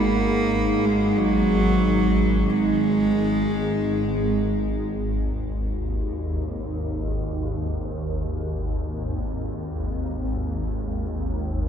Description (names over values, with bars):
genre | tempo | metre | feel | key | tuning
dark ambient drone | free time | none | none | unclear | A4 = 439 Hz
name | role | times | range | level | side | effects
clear cello | melody | 0.0-4.5 s | F#3 to A#3 | -24 LUFS | equal | ping-pong delay
dark analog pad | sustained chords | 0.0-5.1 s | G#3 to G#4 | -24 LUFS | right 2 dB | chorus
swarming drone | drone | 0.0-11.7 s | G#1 to D#2 | -26 LUFS | equal | built-in reverb, analog chorus
room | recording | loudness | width
moderate huge ambient reverb, RT60 8.7 s | dreamy mix soaked in reverb | -21 LUFS | side -8 dB against mid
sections
0.0-5.1 A section; 5.1-11.7 B section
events
filter sweep on synth drone 0.0-5.1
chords
0.0 G#5